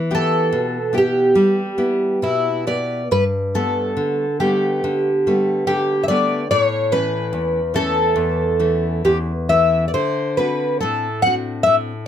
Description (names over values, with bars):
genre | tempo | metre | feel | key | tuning
fado-style ballad | 70 BPM | 2/4 | uneven beats, rubato | E minor, G major from 3.1 s | A4 = 438 Hz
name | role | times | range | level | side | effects
nylon-string guitar | accompaniment | 0.0-12.1 s | E2 to G4 | -21 LUFS | left 2 dB | none
fingerpicked twelve-string acoustic guitar | melody | 0.1-11.7 s | E4 to F#5 | -18 LUFS | equal | none
room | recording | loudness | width
light reverb | close, detailed microphones | -16 LUFS | side -9 dB against mid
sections
0.0-3.1 A section; 3.1-12.1 B section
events
none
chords
0.0 Em; 3.1 Gadd9; 6.5 A; 9.9 D7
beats
0.52 | 1.35 2.21 | 3.10 3.97 | 4.83 5.68 | 6.51 7.34 | 8.19 9.05 | 9.94 10.81 | 11.66